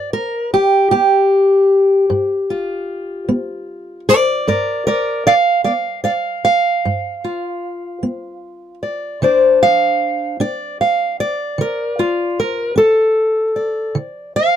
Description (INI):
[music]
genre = acoustic country blues, solo or duo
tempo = 51 BPM (dotted quarters)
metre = 12/8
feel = straight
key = G mixolydian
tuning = A4 = 440 Hz
[part]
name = fingerpicked steel-string acoustic guitar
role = solo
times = 0.0-14.6 s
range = G2 to F5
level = -14 LUFS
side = equal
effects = none
[sound]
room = light reverb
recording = close, detailed microphones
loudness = -14 LUFS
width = side -9 dB against mid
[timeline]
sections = 0.0-14.6 A section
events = none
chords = 0.0 G7; 9.2 D7(no3)